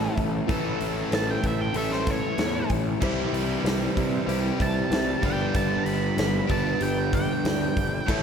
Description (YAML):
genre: classic rock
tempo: 95 BPM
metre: 4/4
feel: straight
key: unclear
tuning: A4 = 437 Hz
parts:
  - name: octave-fuzz lead guitar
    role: melody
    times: 0.0-8.2 s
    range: A4 to B5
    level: -32 LUFS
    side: right 2 dB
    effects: distortion
  - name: clear upright piano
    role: accompaniment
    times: 0.0-8.2 s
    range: D4 to D5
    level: -34 LUFS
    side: left 6 dB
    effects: none
  - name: cranked stack guitar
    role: riff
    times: 0.0-8.2 s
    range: G2 to A4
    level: -30 LUFS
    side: right 10 dB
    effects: overdrive, slapback echo
  - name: crunchy overdriven guitar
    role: riff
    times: 0.0-8.2 s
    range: G2 to A4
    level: -30 LUFS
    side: left 9 dB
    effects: none
  - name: fuzz picked electric bass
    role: bass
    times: 0.0-8.2 s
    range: G1 to C3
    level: -30 LUFS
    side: equal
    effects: overdrive
  - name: big rock drum kit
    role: drums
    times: 0.2-8.2 s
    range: crash cymbal, hi-hat, kick drum, snare drum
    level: -29 LUFS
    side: equal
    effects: none
  - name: bright tonewheel organ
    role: sustained chords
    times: 7.8-8.2 s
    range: A3 to D5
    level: -39 LUFS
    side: equal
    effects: overdrive, slow rotary speaker
room: moderate lush hall reverb, RT60 2.6 s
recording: big arena sound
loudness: -23 LUFS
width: side -7 dB against mid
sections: 0.0-8.2 A section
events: lead electric guitar solo 0.0-8.2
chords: 0.0 A; 3.0 C; 5.2 G